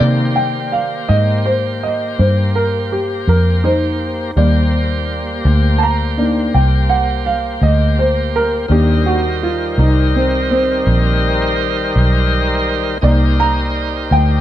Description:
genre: blues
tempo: 55 BPM (dotted quarters)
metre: 12/8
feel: straight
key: C minor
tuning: A4 = 440 Hz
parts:
  - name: warm upright piano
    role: accompaniment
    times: 0.0-14.4 s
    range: Eb3 to Bb5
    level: -17 LUFS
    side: right 1 dB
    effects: none
  - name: bright tonewheel organ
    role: sustained chords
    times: 0.0-14.4 s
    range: Eb3 to C5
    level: -20 LUFS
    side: left 1 dB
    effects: slow rotary speaker, overdrive
  - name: vintage muted fingered electric bass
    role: bass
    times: 0.0-14.4 s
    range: Bb1 to C3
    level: -15 LUFS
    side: equal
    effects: none
room: little or no reverb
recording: none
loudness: -13 LUFS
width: side -12 dB against mid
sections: 0.0-14.4 A section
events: upright piano solo 0.0-14.4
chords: 0.0 Cm7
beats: 1.08 2.17 3.26 | 4.35 5.44 6.52 7.61 | 8.69 9.78 10.86 11.94 | 13.02 14.10

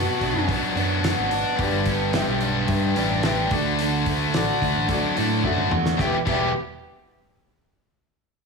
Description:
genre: classic rock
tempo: 109 BPM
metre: 4/4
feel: straight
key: E minor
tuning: A4 = 440 Hz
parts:
  - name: fuzz lead guitar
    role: second line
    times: 0.0-0.5, 6.0-6.5 s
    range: F#4 to G4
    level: -30 LUFS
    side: left 2 dB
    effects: distortion
  - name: overdriven electric guitar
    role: riff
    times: 0.0-6.5 s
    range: E2 to G4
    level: -25 LUFS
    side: right 4 dB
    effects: none
  - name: tight distorted guitar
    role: riff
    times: 0.0-6.5 s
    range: E2 to G4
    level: -25 LUFS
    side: left 8 dB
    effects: distortion
  - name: modern bright fingered electric bass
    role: bass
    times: 0.0-6.5 s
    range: E1 to A2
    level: -27 LUFS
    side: right 1 dB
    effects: none
  - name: damped 70s drum kit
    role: drums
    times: 0.2-6.4 s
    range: crash cymbal, hi-hat, kick drum, snare drum, toms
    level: -29 LUFS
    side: equal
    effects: none
  - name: warm upright piano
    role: accompaniment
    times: 1.6-6.5 s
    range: F#4 to E5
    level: -31 LUFS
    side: left 2 dB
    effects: none
room: light reverb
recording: small room reverb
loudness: -20 LUFS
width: side -4 dB against mid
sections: 0.0-6.0 A section; 6.0-8.2 B section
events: drum fill 5.4-6.0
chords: 0.0 Bm; 1.6 G; 3.5 D; 6.0 Em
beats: 0.49 1.04 | 1.59 2.14 2.69 3.24 | 3.79 4.34 4.89 5.44 | 5.99

